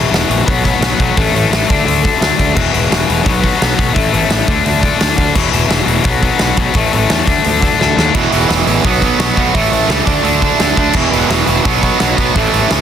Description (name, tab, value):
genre	punk rock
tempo	172 BPM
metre	4/4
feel	straight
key	B minor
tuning	A4 = 437 Hz
part	overdriven electric guitar	riff	0.0-12.8 s	E2 to D4	-15 LUFS	left 7 dB	none
part	fuzz picked electric bass	bass	0.0-12.8 s	E1 to E2	-18 LUFS	equal	overdrive
part	big rock drum kit	drums	0.1-12.8 s	crash cymbal, hi-hat, kick drum, snare drum	-16 LUFS	right 1 dB	none
part	distorted electric guitar	riff	8.1-12.8 s	E2 to D4	-14 LUFS	right 12 dB	overdrive
room	little or no reverb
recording	dense, heavily limited modern master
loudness	-10 LUFS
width	side -9 dB against mid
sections	0.0-12.8 A section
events	drum fill 7.8-8.1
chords	0.5 B5; 1.2 A5; 1.7 D5; 2.6 E5; 3.3 B5; 4.0 A5; 4.5 D5; 5.3 E5; 6.0 B5; 6.7 A5; 7.3 D5; 8.1 E5; 8.8 B5; 9.5 A; 10.1 D5; 10.9 E5; 11.6 B5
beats	0.12 0.47 0.81 | 1.16 1.51 1.86 2.21 | 2.56 2.91 3.26 3.60 | 3.95 4.30 4.65 5.00 | 5.35 5.70 6.05 6.40 | 6.75 7.09 7.44 7.79 | 8.14 8.49 8.84 9.19 | 9.54 9.89 10.24 10.60 | 10.95 11.30 11.65 12.00 | 12.35 12.71